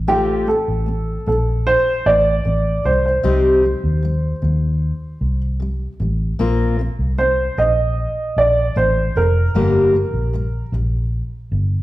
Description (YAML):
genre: acoustic pop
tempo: 76 BPM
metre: 4/4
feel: straight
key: Bb major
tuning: A4 = 437 Hz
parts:
  - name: vintage muted fingered electric bass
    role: bass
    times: 0.0-11.8 s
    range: F1 to Eb2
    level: -19 LUFS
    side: equal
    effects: none
  - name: dark upright piano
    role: melody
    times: 0.1-10.7 s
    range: G4 to Eb5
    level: -18 LUFS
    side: right 2 dB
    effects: none
  - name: fingerpicked steel-string acoustic guitar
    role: accompaniment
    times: 0.1-11.1 s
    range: G2 to Bb4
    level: -20 LUFS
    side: left 2 dB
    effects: none
room: wet recital hall reverb, RT60 1.6 s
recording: recorded in a church or concert hall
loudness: -16 LUFS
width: side -16 dB against mid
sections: 0.0-11.8 A section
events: none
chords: 0.0 Fadd9/A; 2.8 Cm; 6.4 Bbsus2; 9.5 Gm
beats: | 0.09 0.88 1.66 2.45 | 3.24 4.03 4.82 5.61 | 6.39 7.18 7.97 8.76 | 9.55 10.34 11.12